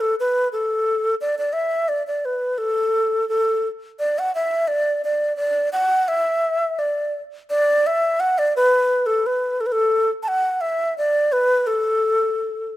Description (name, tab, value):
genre	chinese traditional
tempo	86 BPM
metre	2/4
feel	rubato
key	D gong mode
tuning	A4 = 440 Hz
part	breathy bright xiao	solo	0.0-12.7 s	A4 to A5	-18 LUFS	equal	none
room	light reverb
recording	close, detailed microphones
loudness	-18 LUFS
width	side -15 dB against mid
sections	0.0-7.5 A section; 7.5-12.8 B section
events	none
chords	none